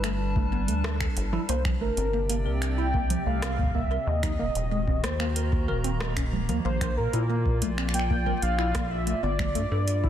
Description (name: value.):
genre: IDM.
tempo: 93 BPM.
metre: 4/4.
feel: straight.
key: unclear.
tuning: A4 = 441 Hz.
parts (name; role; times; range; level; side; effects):
warm velvety synth lead; melody; 0.0-10.1 s; Bb4 to G5; -31 LUFS; equal; chorus, digital delay.
warbly tape-like pad; sustained chords; 0.0-10.1 s; Bb2 to Bb5; -34 LUFS; equal; chorus, built-in reverb, sidechain pumping.
tine electric piano; arpeggios; 0.0-10.1 s; Ab3 to Bb4; -34 LUFS; left 1 dB; medium stereo tremolo, digital delay.
rubbery square bass; bass; 0.0-10.1 s; Eb1 to Bb2; -28 LUFS; equal; none.
booming analog drum machine; drums; 0.0-10.0 s; congas, finger snaps, hi-hat, rim click; -34 LUFS; right 3 dB; overdrive, soft clipping on snare.
electronic kick drum; drums; 0.4-10.1 s; none; -30 LUFS; equal; overdrive.
room: light reverb.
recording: dense, heavily limited modern master.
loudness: -24 LUFS.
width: side -10 dB against mid.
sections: 0.0-10.1 A section.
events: none.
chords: 0.0 G; 1.5 Csus2; 4.1 Ebm; 6.7 Bb; 9.2 G7(no3).